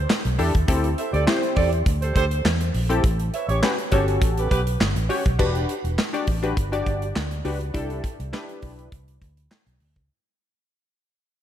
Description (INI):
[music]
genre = early-eighties boogie funk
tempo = 102 BPM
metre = 4/4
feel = straight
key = E minor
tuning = A4 = 442 Hz
[part]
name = vintage muted fingered electric bass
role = bass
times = 0.0-10.1 s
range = E1 to E2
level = -24 LUFS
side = equal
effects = none
[part]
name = modern studio drum kit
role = drums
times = 0.1-10.1 s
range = crash cymbal, handclaps, hi-hat, kick drum, snare drum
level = -24 LUFS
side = equal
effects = none
[part]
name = funky polysynth comp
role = accompaniment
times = 0.4-8.9 s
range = C4 to D5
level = -26 LUFS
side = left 2 dB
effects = chorus
[part]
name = warm horn section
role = second line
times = 1.0-4.6 s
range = B3 to E5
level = -27 LUFS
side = right 4 dB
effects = none
[sound]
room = light reverb, small room ambience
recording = none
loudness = -20 LUFS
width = side -10 dB against mid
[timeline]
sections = 0.0-5.4 A section; 5.4-10.1 B section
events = fade-out 5.4-10.1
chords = 0.0 C69 (rootless); 0.7 D9sus4; 3.0 A13; 5.4 Em9; 7.7 C69